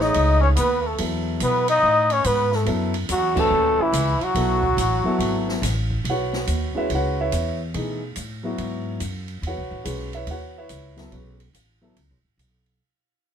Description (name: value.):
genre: modal jazz.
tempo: 142 BPM.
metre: 4/4.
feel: swing 65% on 8ths.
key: unclear.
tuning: A4 = 440 Hz.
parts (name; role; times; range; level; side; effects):
trumpet with bucket mute; melody; 0.0-5.6 s; E4 to D#5; -21 LUFS; equal; none.
trombone with straight mute; second line; 0.0-5.6 s; E3 to D#4; -24 LUFS; left 2 dB; none.
warm baby grand piano; accompaniment; 0.0-12.0 s; E3 to F#5; -27 LUFS; equal; none.
upright bass; bass; 0.0-12.8 s; G#1 to B2; -25 LUFS; equal; none.
open jazz drum kit; drums; 0.0-12.7 s; crash cymbal, hi-hat, kick drum, ride cymbal, snare drum; -32 LUFS; right 2 dB; none.
room: moderate club reverb, RT60 0.7 s.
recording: minimal, uncompressed stereo recording.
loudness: -20 LUFS.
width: side -8 dB against mid.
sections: 0.0-6.0 A section; 6.0-12.8 B section.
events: band accent 3.3; fade-out 6.0-12.8.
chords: 0.0 B9sus4.